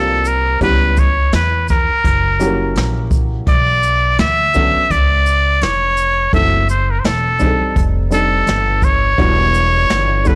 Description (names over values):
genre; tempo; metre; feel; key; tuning
hip hop, jazz-hop; 84 BPM; 4/4; swing 59% on 16ths; unclear; A4 = 439 Hz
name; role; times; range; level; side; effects
trumpet with straight mute; melody; 0.0-10.4 s; A4 to E5; -18 LUFS; equal; none
warm upright piano; accompaniment; 0.0-10.4 s; F#3 to A4; -23 LUFS; equal; none
upright bass; bass; 0.0-10.4 s; E1 to E2; -20 LUFS; equal; none
jazz brush drum kit; drums; 0.2-10.4 s; hi-hat, kick drum, shaker, snare drum; -21 LUFS; equal; soft clipping on snare
room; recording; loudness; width
studio reverb; blown-out, overdriven recording, vinyl crackle, overdrive; -15 LUFS; mono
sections
0.0-10.4 A section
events
none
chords
0.0 Gm11; 0.6 C#m7b5; 2.0 F#7b9; 3.5 Bmadd9; 6.3 F#m7b5; 7.8 F13; 9.2 Em7